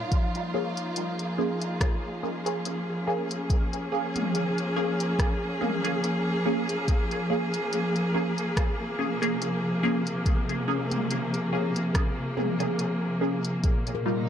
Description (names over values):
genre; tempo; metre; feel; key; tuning
ambient dub; 71 BPM; 4/4; swing 55% on 16ths; Bb minor; A4 = 440 Hz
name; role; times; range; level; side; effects
warm studio string section; sustained chords; 0.0-14.3 s; Bb2 to Ab4; -28 LUFS; equal; none
handpan; arpeggios; 0.0-1.8, 13.9-14.3 s; Bb4 to Db5; -41 LUFS; left 7 dB; dub echo
electronic kick drum; drums; 0.1-13.8 s; none; -25 LUFS; equal; none
organic electronic drum kit; drums; 0.1-14.0 s; hi-hat, rim click, toms; -34 LUFS; equal; dub echo
filtered dub chord stab; stabs; 0.5-14.2 s; G3 to Ab4; -31 LUFS; right 1 dB; phaser, lush chorus, dub echo
room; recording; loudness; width
light reverb, digital ambience; echo-heavy mix; -25 LUFS; side -9 dB against mid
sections
0.1-14.3 A section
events
none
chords
0.1 Bbm7; 13.6 Ebadd9/Bb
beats
| 0.12 0.96 1.81 2.65 | 3.50 4.34 5.19 6.03 | 6.88 7.72 8.57 9.41 | 10.26 11.10 11.95 12.79 | 13.64